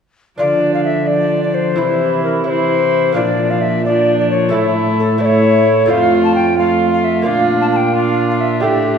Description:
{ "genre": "classical, renaissance-style consort dance", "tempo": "87 BPM (dotted quarters)", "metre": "6/8", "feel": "straight", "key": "D minor", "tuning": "A4 = 440 Hz", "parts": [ { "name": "alto recorder", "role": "melody", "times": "0.4-9.0 s", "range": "A4 to A5", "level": "-16 LUFS", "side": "left 3 dB", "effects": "none" }, { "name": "rich viola", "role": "second line", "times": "0.4-9.0 s", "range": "D4 to G4", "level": "-20 LUFS", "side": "right 4 dB", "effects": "none" }, { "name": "lute", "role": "accompaniment", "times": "0.4-9.0 s", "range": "F2 to D5", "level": "-21 LUFS", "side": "right 3 dB", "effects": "none" }, { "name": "warm viola", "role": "accompaniment", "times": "0.4-9.0 s", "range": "E3 to D4", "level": "-20 LUFS", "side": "left 1 dB", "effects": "none" }, { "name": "mellow trombone", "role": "bass", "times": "0.4-9.0 s", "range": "F2 to D3", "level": "-20 LUFS", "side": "right 1 dB", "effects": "none" } ], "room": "wet concert hall reverb, RT60 2.0 s", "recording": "recorded in a church or concert hall", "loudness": "-12 LUFS", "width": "side -7 dB against mid", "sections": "0.4-9.0 A section", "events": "none", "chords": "0.4 Dm; 1.8 C; 3.2 Bb; 4.5 A; 5.9 F; 7.3 Bb" }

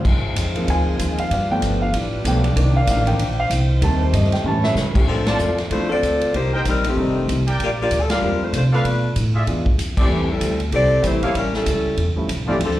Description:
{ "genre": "jazz, big band swing", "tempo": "191 BPM", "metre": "4/4", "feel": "swing 60% on 8ths", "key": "D minor from 5.1 s", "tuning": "A4 = 437 Hz", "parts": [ { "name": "warm grand piano", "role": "accompaniment", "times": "0.0-12.6 s", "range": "Eb3 to A5", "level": "-23 LUFS", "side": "right 1 dB", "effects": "slapback echo" }, { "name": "warm saxophone section", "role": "sustained chords", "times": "0.0-5.1 s", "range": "Eb3 to C#5", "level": "-28 LUFS", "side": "left 2 dB", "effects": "none" }, { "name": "upright bass", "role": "bass", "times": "0.0-12.8 s", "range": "F1 to C#3", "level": "-21 LUFS", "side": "equal", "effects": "none" }, { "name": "swinging big-band drum kit", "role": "drums", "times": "0.0-12.8 s", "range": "crash cymbal, hi-hat, kick drum, ride cymbal, snare drum", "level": "-24 LUFS", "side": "equal", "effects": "none" }, { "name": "warm saxophone section", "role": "melody", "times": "5.0-12.8 s", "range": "Eb3 to D5", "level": "-20 LUFS", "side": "left 2 dB", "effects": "slapback echo" }, { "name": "warm trumpet section", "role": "stabs", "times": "5.3-12.6 s", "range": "F4 to A5", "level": "-27 LUFS", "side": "right 1 dB", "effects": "slapback echo" } ], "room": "light reverb", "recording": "live gig heard through the venue's PA, club reverb", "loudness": "-17 LUFS", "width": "side -14 dB against mid", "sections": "0.0-5.1 A section; 5.1-12.8 B section", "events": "grand piano solo 0.0-5.1; drum fill 4.5-4.8; band accent 5.2, 8.1, 9.9", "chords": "0.1 Ab6; 1.3 G7; 2.6 Cm9; 3.8 Am7b5; 4.5 A7; 5.1 Dm7; 6.3 Cm7; 7.0 F13; 7.6 Bb6; 8.9 Bm7b5; 9.5 E7b9; 10.1 Am7; 11.4 A7b13" }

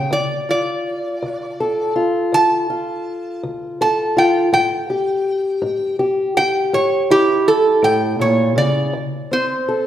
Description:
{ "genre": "acoustic country blues, solo or duo", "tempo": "54 BPM (dotted quarters)", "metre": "12/8", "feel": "straight", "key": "D minor", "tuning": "A4 = 437 Hz", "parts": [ { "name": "metal-body resonator slide guitar", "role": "melody", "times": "0.0-9.9 s", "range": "G4 to A5", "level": "-17 LUFS", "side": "right 2 dB", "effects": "none" }, { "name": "fingerpicked acoustic archtop guitar", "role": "accompaniment", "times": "0.0-9.9 s", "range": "D2 to A4", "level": "-19 LUFS", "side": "left 2 dB", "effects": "none" } ], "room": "wet recital hall reverb, RT60 1.5 s", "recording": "recorded in a church or concert hall", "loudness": "-15 LUFS", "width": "side -11 dB against mid", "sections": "0.0-8.9 A section", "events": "resonator guitar played with a steel bar solo 0.0-8.9", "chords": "0.1 Dm; 4.5 A7(no3); 8.9 D7(no3)" }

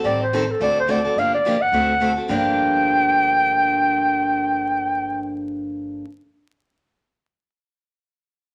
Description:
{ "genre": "acoustic string swing (jazz manouche)", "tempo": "213 BPM", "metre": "4/4", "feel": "swing 56% on 8ths", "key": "G minor", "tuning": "A4 = 438 Hz", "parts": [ { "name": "picked steel-string acoustic guitar", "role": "accompaniment", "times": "0.0-6.1 s", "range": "G2 to A4", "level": "-26 LUFS", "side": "equal", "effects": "none" }, { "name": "upright bass", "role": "bass", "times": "0.0-6.0 s", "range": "G1 to D2", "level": "-37 LUFS", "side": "equal", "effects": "none" }, { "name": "breathy clarinet", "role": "melody", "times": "0.1-5.3 s", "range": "A4 to G5", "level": "-21 LUFS", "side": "equal", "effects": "none" } ], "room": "moderate large studio reverb, RT60 1.0 s", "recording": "vinyl crackle", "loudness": "-20 LUFS", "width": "mono", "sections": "0.0-2.3 A section; 2.3-4.5 B section", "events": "none", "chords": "0.0 Am7b5; 0.6 D7; 1.2 Gm7; 1.7 D7; 2.3 Gm7" }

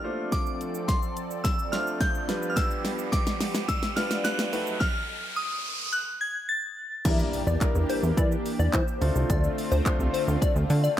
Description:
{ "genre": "dance-pop", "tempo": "107 BPM", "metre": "4/4", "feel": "straight", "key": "D minor", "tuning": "A4 = 441 Hz", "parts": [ { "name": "glassy synth bell", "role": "melody", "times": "0.0-7.0 s", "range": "C6 to A6", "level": "-31 LUFS", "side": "left 1 dB", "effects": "chorus, tape echo" }, { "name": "clear concert grand piano", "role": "accompaniment", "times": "0.0-10.6 s", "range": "G3 to C5", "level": "-32 LUFS", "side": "equal", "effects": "sidechain pumping" }, { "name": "lush unison pad", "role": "sustained chords", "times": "0.0-11.0 s", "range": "D3 to D#5", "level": "-34 LUFS", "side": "equal", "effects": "chorus, phaser, sidechain pumping" }, { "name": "riser and impact", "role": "sound effects", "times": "0.6-9.3 s", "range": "none", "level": "-36 LUFS", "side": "right 2 dB", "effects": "none" }, { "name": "deep house drum kit", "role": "drums", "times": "0.3-11.0 s", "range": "crash cymbal, handclaps, hi-hat, kick drum, shaker, snare drum", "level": "-27 LUFS", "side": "equal", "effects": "none" }, { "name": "plucky unison lead", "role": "melody", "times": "7.0-10.9 s", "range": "C5 to E5", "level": "-31 LUFS", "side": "left 4 dB", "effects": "sidechain pumping" }, { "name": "plucky analog bass", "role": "bass", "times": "7.0-10.9 s", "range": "C2 to E3", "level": "-24 LUFS", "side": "equal", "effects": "sidechain pumping" } ], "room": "digital ambience", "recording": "none", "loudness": "-24 LUFS", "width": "side -12 dB against mid", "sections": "0.0-7.1 A section; 7.1-11.0 B section", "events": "build-up 0.0-7.1; drum fill 0.0-4.8; riser 0.6-7.1; stop 4.8-7.1; drop 7.1-11.0; impact 7.1-9.3", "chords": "0.0 Dm7; 2.3 G7; 4.5 B7; 7.1 Em7b5; 9.0 Dm7" }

